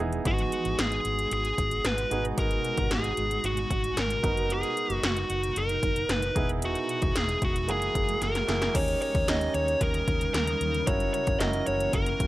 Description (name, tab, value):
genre	1980s-style pop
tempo	113 BPM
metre	4/4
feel	straight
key	G# minor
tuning	A4 = 440 Hz
part	warm concert grand piano	accompaniment	0.0-12.3 s	A#3 to C#5	-34 LUFS	right 4 dB	none
part	granular cloud pad	sustained chords	0.0-12.3 s	B2 to A#4	-37 LUFS	equal	built-in reverb
part	vintage muted fingered electric bass	bass	0.0-12.3 s	E1 to D#2	-32 LUFS	equal	none
part	80s electronic pad drums	drums	0.1-12.3 s	crash cymbal, hi-hat, kick drum, snare drum	-30 LUFS	equal	none
part	fuzz lead guitar	melody	0.3-12.3 s	F#4 to D#5	-28 LUFS	equal	distortion, slapback echo
room	light reverb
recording	none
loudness	-25 LUFS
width	side -16 dB against mid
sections	0.0-8.7 A section; 8.7-12.3 B section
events	drum fill 8.2-8.7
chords	0.3 G#m7; 4.2 Bmaj7/F#; 6.4 Emaj7; 7.7 F#9; 8.7 D#7; 10.9 F#7